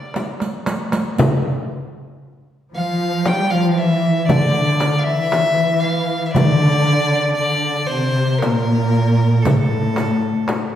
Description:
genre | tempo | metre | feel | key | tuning
Turkish makam ensemble | 116 BPM (eighths) | 10/8 | straight | D makam nihavent | A4 = 440 Hz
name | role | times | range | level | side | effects
clear violin | melody | 0.0-10.5 s | A4 to G5 | -21 LUFS | equal | none
darbuka | percussion | 0.1-10.7 s | none | -22 LUFS | right 1 dB | none
frame drum | percussion | 0.2-10.7 s | none | -24 LUFS | left 2 dB | none
riq | percussion | 0.2-10.7 s | none | -26 LUFS | right 2 dB | none
warm studio cello section | second line | 2.7-10.4 s | A2 to G3 | -17 LUFS | equal | none
room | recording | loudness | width
wet concert hall reverb, RT60 1.7 s | heard from further back in the room | -15 LUFS | side -10 dB against mid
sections
0.0-1.2 A section; 1.2-10.8 B section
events
drum fill 0.2-1.2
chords
none

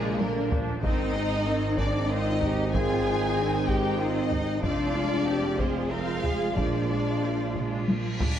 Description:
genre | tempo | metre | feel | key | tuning
cinematic, epic orchestral film score | 95 BPM | 3/4 | straight | unclear | A4 = 437 Hz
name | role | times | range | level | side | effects
warm symphonic violin section | melody | 0.0-7.9 s | Ab4 to Ab5 | -34 LUFS | left 3 dB | none
warm chamber violin section | second line | 0.0-7.9 s | Ab3 to Ab4 | -35 LUFS | left 1 dB | none
rich symphonic viola section | accompaniment | 0.0-8.4 s | D3 to F4 | -34 LUFS | right 2 dB | none
warm French horn section | sustained chords | 0.0-7.9 s | Ab3 to D5 | -32 LUFS | left 4 dB | none
warm trombone section | sustained chords | 0.0-8.2 s | Eb3 to C4 | -33 LUFS | right 4 dB | none
rich studio cello section | bass | 0.0-8.2 s | C4 to Bb4 | -34 LUFS | equal | none
rich symphonic double bass section | bass | 0.0-8.3 s | F1 to Bb1 | -31 LUFS | right 3 dB | none
taiko ensemble | drums | 0.2-8.4 s | none | -30 LUFS | equal | none
reverse cymbal | sound effects | 7.7-8.4 s | none | -38 LUFS | equal | none
room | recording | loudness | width
wet scoring stage reverb, RT60 2.1 s | none | -24 LUFS | side -10 dB against mid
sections
0.0-8.4 A section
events
drum fill 0.0-0.8, 7.6-8.4; reverse cymbal 7.7-8.4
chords
0.0 Bb; 0.8 Ab; 4.6 Fm; 6.6 Bb7

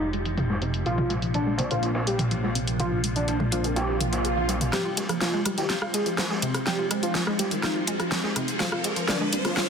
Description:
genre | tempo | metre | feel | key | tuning
melodic techno | 124 BPM | 4/4 | straight | F dorian | A4 = 440 Hz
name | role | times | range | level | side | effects
fat analog lead | melody | 0.0-9.6 s | D4 to Ab4 | -30 LUFS | equal | wide subtle chorus, cassette tape, digital delay
evolving wavetable pad | sustained chords | 0.0-9.7 s | C3 to C5 | -33 LUFS | equal | ensemble chorus, built-in reverb, phaser
analog pluck | arpeggios | 0.0-9.7 s | C3 to Ab4 | -31 LUFS | equal | chorus, tape echo
filtered dub chord stab | stabs | 0.0-9.7 s | Ab3 to G4 | -36 LUFS | equal | phaser, ensemble chorus, tape echo
fat analog bass | bass | 0.0-4.7 s | F1 to Bb1 | -30 LUFS | equal | tube saturation
deep house drum kit | drums | 0.1-9.7 s | hi-hat, rim click, snare drum, toms | -28 LUFS | equal | soft clipping on snare
street-band drum kit | drums | 0.1-9.7 s | ride cymbal, snare drum | -36 LUFS | equal | high-pass filter on cymbals, low-pass filter on cymbals, high-pass filter on snare, low-pass filter on snare, high-pass filter on room, low-pass filter on room
swell and riser | sound effects | 3.9-9.7 s | none | -33 LUFS | right 2 dB | none
room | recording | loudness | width
moderate huge ambient reverb, RT60 3.7 s | dense, heavily limited modern master, low-pass filter | -23 LUFS | side -6 dB against mid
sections
0.0-4.7 A section; 4.7-9.7 B section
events
filter sweep on synth stab 0.0-4.7; filter sweep 0.0-4.7; swell 3.9-4.7; build-up 4.7-9.7; drum fill 4.7-9.7; riser 4.7-9.7; filter sweep on analog synth lead 4.7-9.7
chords
0.0 Fmadd9; 0.9 Bbadd9; 4.7 Fmadd9; 8.6 Bbadd9

